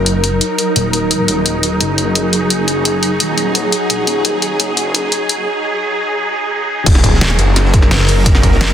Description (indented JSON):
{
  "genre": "dark technical drum and bass",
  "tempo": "172 BPM",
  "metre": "4/4",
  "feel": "straight",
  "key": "Eb minor",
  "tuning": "A4 = 440 Hz",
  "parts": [
    { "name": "swarming drone", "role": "sustained chords", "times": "0.0-8.7 s", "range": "Gb3 to Bb4", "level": "-16 LUFS", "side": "equal", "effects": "built-in reverb, sidechain pumping" },
    { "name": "snarling distorted saw bass", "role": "bass", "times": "0.0-8.7 s", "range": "Eb1 to Bb1", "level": "-17 LUFS", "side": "equal", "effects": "distortion, tube saturation, sidechain pumping" },
    { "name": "dubstep drum kit", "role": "drums", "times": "0.1-8.7 s", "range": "crash cymbal, hi-hat, snare drum", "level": "-16 LUFS", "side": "left 1 dB", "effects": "none" },
    { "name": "crunchy breakbeat drum kit", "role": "drums", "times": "6.9-8.7 s", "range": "hi-hat, ride cymbal, snare drum", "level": "-25 LUFS", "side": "equal", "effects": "none" },
    { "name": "electronic kick drum", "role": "drums", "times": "6.9-8.5 s", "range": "none", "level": "-11 LUFS", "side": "equal", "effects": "none" }
  ],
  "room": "moderate lush hall reverb, RT60 2.1 s",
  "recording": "dense, heavily limited modern master, high-pass filter",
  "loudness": "-12 LUFS",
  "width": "side -10 dB against mid",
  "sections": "0.0-6.9 A section; 6.9-8.7 B section",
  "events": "build-up 0.0-6.9; break 5.5-6.9; drop 6.9-8.7",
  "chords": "0.0 Ebm",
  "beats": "0.24 0.58 0.93 | 1.28 1.63 1.98 2.33 | 2.68 3.03 3.38 3.72 | 4.07 4.42 4.77 5.12 | 5.47 5.82 6.17 6.51 | 6.86 7.21 7.56 7.91 | 8.26 8.61"
}